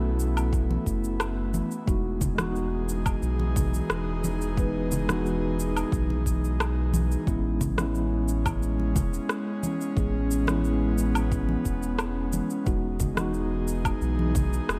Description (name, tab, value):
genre	sunset chillout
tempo	89 BPM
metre	4/4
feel	straight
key	E major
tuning	A4 = 440 Hz
part	mellow tine electric piano	accompaniment	0.0-14.8 s	G#3 to B4	-34 LUFS	equal	low-pass filter, delay
part	airy breathy pad	sustained chords	0.0-14.8 s	E3 to G#4	-34 LUFS	equal	chorus
part	round analog bass	bass	0.0-14.8 s	E1 to B1	-30 LUFS	equal	none
part	electronic cabasa, woodblock and rim click	drums	0.2-14.8 s	none	-35 LUFS	equal	none
part	electronic kick drum	drums	0.5-14.5 s	none	-31 LUFS	equal	none
part	congas	percussion	0.7-14.5 s	none	-35 LUFS	equal	none
room	light reverb, digital ambience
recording	none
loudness	-27 LUFS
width	mono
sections	0.0-14.8 A section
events	none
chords	0.0 B9sus4; 1.9 Emaj7; 7.3 Amaj7; 12.7 Emaj7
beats	0.53 1.20 | 1.88 2.55 3.22 3.90 | 4.57 5.25 5.92 6.59 | 7.27 7.94 8.62 9.29 | 9.96 10.64 11.31 11.99 | 12.66 13.34 14.01 14.68